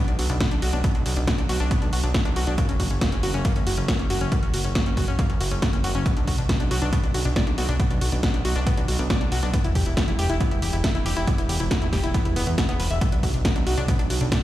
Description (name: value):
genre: uplifting trance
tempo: 138 BPM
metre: 4/4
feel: straight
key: B harmonic minor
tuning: A4 = 441 Hz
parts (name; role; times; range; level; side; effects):
- analog pluck; arpeggios; 0.0-14.4 s; A#3 to E5; -29 LUFS; left 2 dB; chorus, sidechain pumping, digital delay
- fat analog bass; bass; 0.1-14.3 s; E1 to E2; -25 LUFS; equal; sidechain pumping
- punchy analog drum machine; drums; 0.1-14.4 s; hi-hat, snare drum; -29 LUFS; right 1 dB; overdrive
- electronic kick drum; drums; 0.4-14.4 s; none; -24 LUFS; equal; overdrive
room: little or no reverb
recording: played on a big sound system in a bare room, large studio reverb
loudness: -20 LUFS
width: side -14 dB against mid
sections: 0.0-14.4 A section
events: none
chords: 0.0 Bm; 2.6 F#; 6.1 Bm; 9.5 Em; 13.0 Bm